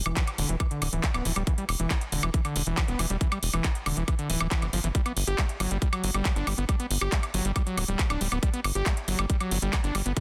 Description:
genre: psychedelic trance.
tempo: 138 BPM.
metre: 4/4.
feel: straight.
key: E minor.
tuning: A4 = 440 Hz.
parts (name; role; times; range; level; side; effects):
tight sequencer bass; bass; 0.0-10.1 s; D1 to G1; -32 LUFS; equal; none.
overdriven acid bass; riff; 0.1-10.2 s; D3 to G4; -34 LUFS; equal; distortion, sidechain pumping, dub echo.
drum and bass drum kit; drums; 0.1-10.2 s; handclaps, hi-hat, woodblock; -33 LUFS; equal; none.
electronic kick drum; drums; 0.2-10.2 s; none; -29 LUFS; equal; none.
room: digital ambience.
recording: dense, heavily limited modern master.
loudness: -27 LUFS.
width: mono.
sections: 0.0-10.2 A section.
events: none.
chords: 0.0 E5; 4.9 G5.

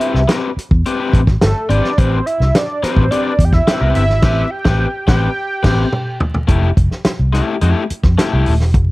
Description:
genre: funk.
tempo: 106 BPM.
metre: 4/4.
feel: straight.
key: A minor.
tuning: A4 = 440 Hz.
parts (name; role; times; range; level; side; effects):
fat analog lead; melody; 0.0-6.2 s; A4 to G5; -19 LUFS; right 2 dB; chorus.
crunchy overdriven guitar; accompaniment; 0.0-8.5 s; A3 to B4; -20 LUFS; left 4 dB; tube saturation.
warm soul drum kit; drums; 0.0-8.9 s; crash cymbal, hi-hat, kick drum, snare drum, toms; -16 LUFS; equal; none.
vintage muted fingered electric bass; bass; 0.1-8.9 s; D#1 to F2; -14 LUFS; equal; none.
room: small room ambience.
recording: dark, warm production, vinyl crackle.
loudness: -12 LUFS.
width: side -20 dB against mid.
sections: 0.0-6.5 A section; 6.5-8.9 B section.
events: band accent 4.2-6.5; drum fill 5.4-6.5.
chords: 0.0 Am9; 6.5 Fmaj9.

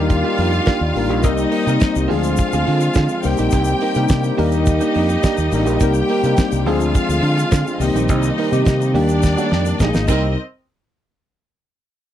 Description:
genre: disco.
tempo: 105 BPM.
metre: 4/4.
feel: straight.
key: C minor.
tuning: A4 = 442 Hz.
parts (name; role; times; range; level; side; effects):
clear studio string section; second line; 0.0-10.3 s; C4 to G5; -23 LUFS; equal; none.
direct-recorded clean electric guitar; accompaniment; 0.0-10.3 s; Bb3 to Bb4; -25 LUFS; right 8 dB; wide subtle chorus.
tine electric piano; accompaniment; 0.0-10.4 s; Eb3 to Bb4; -21 LUFS; left 6 dB; wide subtle chorus.
warm French horn section; sustained chords; 0.0-10.4 s; D3 to D5; -24 LUFS; right 3 dB; none.
fingered electric bass; bass; 0.0-10.4 s; Ab1 to D3; -19 LUFS; equal; none.
damped 70s drum kit; drums; 0.1-10.2 s; crash cymbal, hi-hat, kick drum, snare drum; -18 LUFS; right 1 dB; none.
egg shaker; percussion; 1.2-10.3 s; none; -36 LUFS; left 24 dB; none.
room: little or no reverb.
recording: dry, close 1970s-style studio recording.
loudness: -15 LUFS.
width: side -11 dB against mid.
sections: 0.0-10.4 A section; 10.4-12.1 B section.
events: drum fill 9.2-10.4.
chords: 0.0 Ebmaj7; 1.2 Cm7; 2.1 Dm7b5; 3.2 Cm7; 4.4 Ebmaj7; 5.8 Cm7; 6.7 Dm7b5; 7.8 Cm7; 8.9 Ebmaj7; 9.8 Bb7sus4; 10.1 Cm7; 10.4 N.C..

